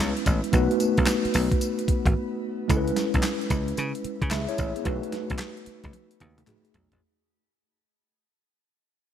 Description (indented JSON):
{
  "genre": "R&B, new jack swing",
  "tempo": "111 BPM",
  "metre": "4/4",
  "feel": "swing 65% on 16ths",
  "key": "unclear",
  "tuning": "A4 = 440 Hz",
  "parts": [
    { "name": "mellow tine electric piano", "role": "accompaniment", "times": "0.0-7.0 s", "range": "G#3 to E5", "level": "-27 LUFS", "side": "equal", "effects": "medium stereo tremolo, shimmer reverb" },
    { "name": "dry thumbed slap bass", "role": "bass", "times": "0.0-7.0 s", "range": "G#1 to C#3", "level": "-27 LUFS", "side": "equal", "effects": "none" },
    { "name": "crisp 8-bit digital drum machine", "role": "drums", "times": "0.2-7.0 s", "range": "handclaps, hi-hat, kick drum, snare drum, tambourine, toms", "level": "-26 LUFS", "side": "equal", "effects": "overdrive" },
    { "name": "group handclap", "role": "percussion", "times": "1.1-6.6 s", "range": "none", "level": "-43 LUFS", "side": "left 3 dB", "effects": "none" }
  ],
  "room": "moderate lush hall reverb, RT60 2.2 s",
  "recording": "dreamy mix soaked in reverb",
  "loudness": "-23 LUFS",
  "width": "side -10 dB against mid",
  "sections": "0.0-2.7 A section; 2.7-7.0 B section",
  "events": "break 2.1-2.7; fade-out 2.7-7.0; drum fill 5.9-7.0",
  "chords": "0.0 C#m7; 0.5 B7; 2.7 C#m7; 4.9 B7"
}